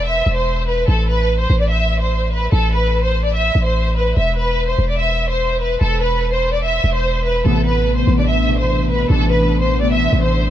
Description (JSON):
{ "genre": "hip hop", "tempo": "146 BPM", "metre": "4/4", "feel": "half-time", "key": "A minor", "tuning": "A4 = 439 Hz", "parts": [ { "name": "rich studio violin section", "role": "melody", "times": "0.0-10.5 s", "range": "A4 to E5", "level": "-18 LUFS", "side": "equal", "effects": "low-pass filter, digital delay" }, { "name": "warm 808-style bass", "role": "bass", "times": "0.0-10.5 s", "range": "E1 to A1", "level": "-18 LUFS", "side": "equal", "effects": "none" }, { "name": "warbly lo-fi synth keys", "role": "accompaniment", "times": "7.4-10.5 s", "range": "B2 to D4", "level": "-19 LUFS", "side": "left 1 dB", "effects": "chorus, low-pass filter" } ], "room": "studio reverb", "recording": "none", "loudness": "-14 LUFS", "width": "side -11 dB against mid", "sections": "0.0-10.5 A section", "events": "none", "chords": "0.0 Cmaj7/E; 0.9 Amadd9; 4.2 Cmaj7/E; 7.5 Amadd9" }